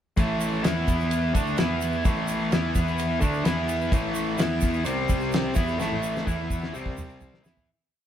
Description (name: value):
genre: classic rock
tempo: 128 BPM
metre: 4/4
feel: straight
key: unclear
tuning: A4 = 440 Hz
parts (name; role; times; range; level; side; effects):
- phased string machine; sustained chords; 0.2-7.4 s; B3 to G5; -38 LUFS; left 3 dB; none
- overdriven electric guitar; riff; 0.2-7.7 s; A2 to E4; -26 LUFS; equal; none
- fuzz picked electric bass; bass; 0.2-7.7 s; A1 to E2; -31 LUFS; equal; overdrive
- damped 70s drum kit; drums; 0.2-7.7 s; kick drum, ride cymbal, snare drum, toms; -26 LUFS; equal; none
- tube shaker; percussion; 0.2-7.6 s; none; -45 LUFS; right 5 dB; none
room: moderate stone room reverb, RT60 1.4 s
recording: band playing live in one room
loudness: -23 LUFS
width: side -10 dB against mid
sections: 0.2-7.7 riff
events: fade-out 5.8-7.7; drum fill 5.8-7.7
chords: 0.2 A; 0.6 E5; 1.4 D5; 1.6 E5; 2.1 A; 2.5 E5; 3.2 D5; 3.5 E5; 3.9 A; 4.4 E5; 4.9 C5; 5.6 A; 6.3 E5; 6.7 C5; 7.4 E5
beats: | 0.18 0.65 1.12 1.58 | 2.05 2.52 2.99 3.46 | 3.92 4.39 4.86 5.33 | 5.80 6.26 6.74 7.21